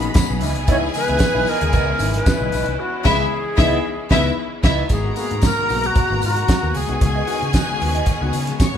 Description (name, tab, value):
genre	disco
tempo	114 BPM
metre	4/4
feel	straight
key	unclear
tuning	A4 = 440 Hz
part	bright reedy alto flute	melody	0.0-7.8 s	D#4 to C#5	-24 LUFS	equal	none
part	clear studio string section	second line	0.0-8.8 s	B3 to C#6	-24 LUFS	left 2 dB	tape echo
part	mellow electric guitar	accompaniment	0.0-8.8 s	B3 to D#5	-30 LUFS	right 9 dB	wah, spring reverb
part	warm grand piano	accompaniment	0.0-8.8 s	G#2 to F#4	-26 LUFS	left 6 dB	none
part	clear studio string section	sustained chords	0.0-8.8 s	B2 to G#4	-30 LUFS	left 1 dB	none
part	fingered electric bass	bass	0.0-8.8 s	G#1 to C#3	-24 LUFS	equal	none
part	damped 70s drum kit	drums	0.0-8.7 s	crash cymbal, hi-hat, kick drum, snare drum	-19 LUFS	equal	none
part	tambourine	percussion	0.2-8.7 s	none	-36 LUFS	left 6 dB	none
room	moderate large studio reverb, RT60 0.8 s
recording	band playing live in one room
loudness	-16 LUFS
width	side -9 dB against mid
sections	0.0-4.9 A section; 4.9-8.8 B section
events	band accent 2.8-4.9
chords	0.4 C#m9; 4.9 G#m9; 6.7 C#9sus4